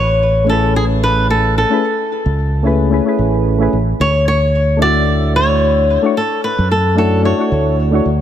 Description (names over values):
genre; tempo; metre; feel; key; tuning
sunset chillout; 111 BPM; 4/4; swing 55% on 16ths; A major; A4 = 441 Hz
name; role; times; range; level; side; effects
flamenco guitar; melody; 0.0-7.8 s; G#4 to D5; -16 LUFS; left 1 dB; digital delay
fingered electric bass; bass; 0.0-8.2 s; A1 to F#2; -16 LUFS; right 1 dB; none
soft electric-piano-like synth keys; accompaniment; 0.4-8.1 s; A3 to E5; -18 LUFS; moving between left 5 dB and right 5 dB; chorus, auto-pan, digital delay
room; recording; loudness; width
light reverb, small room ambience; none; -12 LUFS; side -10 dB against mid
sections
0.0-8.2 A section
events
none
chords
0.0 Amaj9; 4.0 Dmaj9